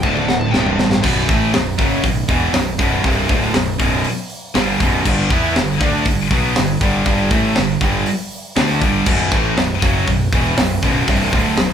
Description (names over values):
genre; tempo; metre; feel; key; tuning
heavy metal; 120 BPM; 4/4; straight; B minor; A4 = 439 Hz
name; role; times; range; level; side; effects
bluesy overdriven lead guitar; melody; 0.0-0.7 s; D5 to A5; -24 LUFS; left 2 dB; distortion
crunchy overdriven guitar; riff; 0.0-11.7 s; B1 to E4; -21 LUFS; equal; none
heavy high-gain guitar; riff; 0.0-11.7 s; B1 to E4; -22 LUFS; left 7 dB; distortion
scooped high-gain guitar; riff; 0.0-11.7 s; B1 to E4; -21 LUFS; right 5 dB; distortion
fuzz fingered electric bass; bass; 0.0-11.7 s; B0 to E2; -23 LUFS; left 1 dB; overdrive
tight metal drum kit; drums; 0.0-11.7 s; crash cymbal, hi-hat, kick drum, snare drum, toms; -18 LUFS; equal; none
room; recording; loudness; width
moderate large studio reverb, RT60 0.8 s; band playing live in one room; -14 LUFS; side -8 dB against mid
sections
0.0-1.0 A section; 1.0-11.7 B section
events
drum fill 0.0-1.0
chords
0.0 D5; 0.5 C5; 1.0 Bm; 5.1 G5; 9.1 Bm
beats
0.03 0.53 | 1.04 1.54 2.04 2.54 | 3.05 3.55 4.05 4.55 | 5.05 5.55 6.06 6.56 | 7.06 7.56 8.06 8.57 | 9.07 9.57 10.07 10.58 | 11.08 11.58